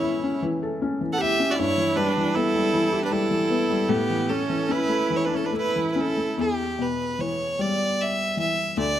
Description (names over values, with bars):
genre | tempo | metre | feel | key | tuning
celtic folk, Celtic slow air | 69-79 BPM | 3/4 | rubato | E dorian | A4 = 440 Hz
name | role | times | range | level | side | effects
clear fiddle | melody | 0.0-9.0 s | G4 to F#5 | -26 LUFS | right 1 dB | none
rich viola | second line | 0.0-6.4 s | B3 to A4 | -27 LUFS | right 4 dB | none
felt-muted upright piano | accompaniment | 0.0-9.0 s | D2 to A4 | -25 LUFS | left 3 dB | none
room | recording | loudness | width
moderate recital hall reverb, RT60 1.4 s | close, detailed microphones | -21 LUFS | side -11 dB against mid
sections
0.0-6.4 A section; 6.4-9.0 B section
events
none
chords
0.0 A; 1.6 Em/G; 3.9 A; 6.4 Em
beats
0.03 0.81 | 1.58 2.35 3.11 | 3.88 4.69 5.53 | 6.38 7.19 7.98 | 8.77